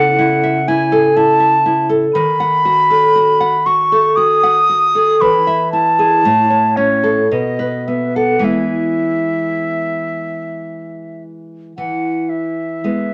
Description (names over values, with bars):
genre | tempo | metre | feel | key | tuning
romantic duo for flute and classical guitar | 53-62 BPM | 3/4 | rubato | E major | A4 = 440 Hz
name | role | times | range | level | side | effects
concert flute | melody | 0.0-13.1 s | C#5 to D#6 | -17 LUFS | equal | none
nylon-string guitar | accompaniment | 0.0-13.1 s | A2 to F#5 | -19 LUFS | equal | none
room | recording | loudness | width
moderate club reverb, RT60 0.6 s | none | -14 LUFS | mono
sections
0.0-11.8 A section; 11.8-13.1 B section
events
none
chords
0.0 A/C#; 2.1 B7/D#; 5.2 E; 6.2 A; 7.3 B7; 8.4 E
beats
0.19 1.16 | 2.14 3.15 4.17 | 5.21 6.24 7.31 | 8.43 9.54 10.66 | 11.78 12.83